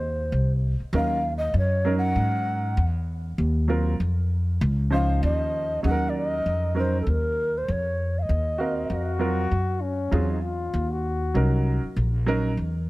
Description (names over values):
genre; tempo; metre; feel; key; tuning
hip hop, jazz-hop; 98 BPM; 4/4; swing 57% on 16ths; Eb dorian; A4 = 442 Hz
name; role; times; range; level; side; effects
mellow long shakuhachi; melody; 0.0-9.1 s; A4 to Gb5; -28 LUFS; equal; none
upright bass; bass; 0.0-12.9 s; Bb1 to Ab2; -24 LUFS; equal; none
warm upright piano; accompaniment; 0.9-12.5 s; F3 to F5; -27 LUFS; right 3 dB; none
breathy trombone; second line; 8.9-12.1 s; Db4 to Gb4; -30 LUFS; left 3 dB; none
room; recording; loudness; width
studio reverb; none; -22 LUFS; side -19 dB against mid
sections
0.0-5.8 A section; 5.8-12.9 B section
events
shakuhachi solo 0.0-5.8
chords
0.0 Ab/Eb (rootless); 0.9 Ebm7; 3.4 Ebm69; 4.6 Dbmaj9; 5.8 Ebm7; 8.3 Ab13/Eb (rootless); 10.7 Ebm7